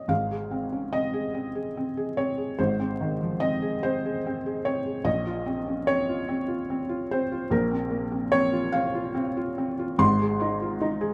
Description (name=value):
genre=neoclassical minimalist piano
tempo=49 BPM (dotted quarters)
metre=6/8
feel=rubato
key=unclear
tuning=A4 = 440 Hz
part: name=felt-muted upright piano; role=solo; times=0.0-11.1 s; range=Ab1 to C6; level=-27 LUFS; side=equal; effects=tape echo
room=moderate studio reverb, RT60 0.5 s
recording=rough home demo mix, vinyl crackle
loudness=-27 LUFS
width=mono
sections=0.1-11.1 A section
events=none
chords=0.1 Ab; 5.1 Bbmadd9; 10.0 Ab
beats=| 0.10 1.34 | 2.58 3.82 | 5.06 6.29 | 7.51 8.74 | 10.01